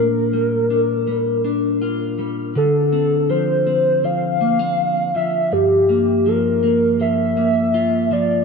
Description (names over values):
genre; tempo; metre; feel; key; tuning
dream pop; 81 BPM; 4/4; straight; unclear; A4 = 439 Hz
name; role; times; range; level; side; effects
warbly nostalgic lead; melody; 0.0-8.4 s; G4 to F5; -18 LUFS; left 1 dB; chorus, tremolo, ping-pong delay
clean electric guitar; arpeggios; 0.0-8.4 s; G2 to F4; -20 LUFS; equal; wide subtle chorus, ping-pong delay
room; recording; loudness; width
wet plate reverb, RT60 3.1 s; dark, warm production; -16 LUFS; side -4 dB against mid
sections
0.0-8.4 A section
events
none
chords
0.0 Bb6; 2.6 Dm7; 5.5 Gm7